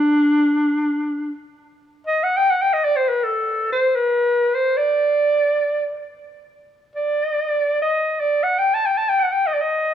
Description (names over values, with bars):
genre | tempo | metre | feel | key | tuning
Turkish makam ensemble | free time | none | none | D makam hicaz | A4 = 441 Hz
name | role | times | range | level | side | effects
breathy clarinet | solo | 0.0-9.9 s | D4 to A5 | -17 LUFS | equal | none
room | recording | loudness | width
light reverb, small room ambience | rough home demo mix | -17 LUFS | side -10 dB against mid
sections
0.0-1.5 A section; 1.5-9.9 A section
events
none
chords
none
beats
free time